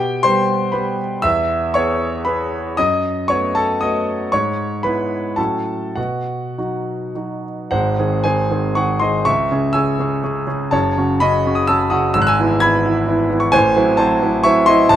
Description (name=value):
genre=classical, romantic character piece for solo piano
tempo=97-133 BPM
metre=3/4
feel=rubato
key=E major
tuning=A4 = 440 Hz
part: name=clear concert grand piano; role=solo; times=0.0-15.0 s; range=F#1 to G#6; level=-15 LUFS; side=equal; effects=none
room=light reverb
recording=close, detailed microphones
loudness=-15 LUFS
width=side -11 dB against mid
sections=0.0-7.7 A section; 7.7-15.0 B section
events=none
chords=0.0 G/B; 1.2 E; 2.8 B7/F#; 4.3 E/G#; 5.4 F#m/A; 6.0 B; 7.7 G#7; 9.3 C#m; 10.7 F#m; 12.2 E/G#; 13.5 F#m7b5/A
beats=0.26 0.74 | 1.24 1.76 2.27 | 2.78 3.29 3.82 | 4.32 4.84 5.38 | 5.97 6.58 7.15 | 7.73 8.25 8.77 | 9.28 9.76 10.24 | 10.73 11.22 11.69 | 12.16 12.63 13.08 | 13.54 14.00 14.46 | 14.92